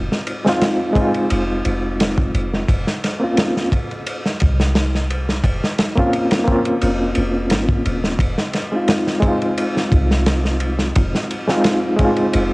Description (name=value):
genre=trip hop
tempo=87 BPM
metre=4/4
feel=swing 53% on 16ths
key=F minor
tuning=A4 = 442 Hz
part: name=overdriven reed electric piano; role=accompaniment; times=0.0-12.5 s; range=Ab3 to F4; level=-19 LUFS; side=equal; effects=fast tremolo, vintage 12-bit sampler grit, cassette tape
part: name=soft 808-style bass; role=bass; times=0.0-12.5 s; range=Eb1 to C2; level=-20 LUFS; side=equal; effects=tube saturation
part: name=crunchy breakbeat drum kit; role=drums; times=0.1-12.5 s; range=kick drum, ride cymbal, snare drum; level=-19 LUFS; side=equal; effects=none
room=small room reverb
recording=home recording on cassette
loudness=-16 LUFS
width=side -24 dB against mid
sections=0.0-12.5 A section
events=none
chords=0.0 Fm7; 2.7 Bbmadd9/F; 8.2 Fm7